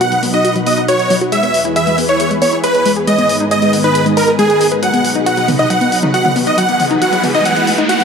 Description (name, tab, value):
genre	uplifting trance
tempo	137 BPM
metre	4/4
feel	straight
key	unclear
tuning	A4 = 440 Hz
part	big supersaw lead	melody	0.0-8.0 s	G#4 to F#5	-14 LUFS	right 1 dB	tape echo
part	analog string pad	sustained chords	0.0-8.0 s	E2 to F#5	-18 LUFS	equal	ensemble chorus
part	wide unison pluck	arpeggios	0.0-8.0 s	F#3 to G#5	-17 LUFS	left 2 dB	vintage 12-bit sampler grit, tape echo
part	punchy analog drum machine	drums	0.0-8.0 s	hi-hat, toms	-22 LUFS	left 1 dB	none
part	riser	sound effects	6.0-8.0 s	none	-22 LUFS	right 2 dB	none
room	moderate huge ambient reverb, RT60 5.0 s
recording	dark, warm production, high-pass filter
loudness	-11 LUFS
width	side -6 dB against mid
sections	0.0-8.0 A section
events	build-up 0.0-8.0; filter sweep on synth pluck 0.0-8.0; riser 6.0-8.0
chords	0.0 B; 1.3 E; 3.1 G#m; 4.8 B; 6.6 E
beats	0.01 0.45 0.89 | 1.32 1.76 2.20 2.64 | 3.08 3.51 3.95 4.39 | 4.83 5.26 5.70 6.14 | 6.58 7.02 7.45 7.89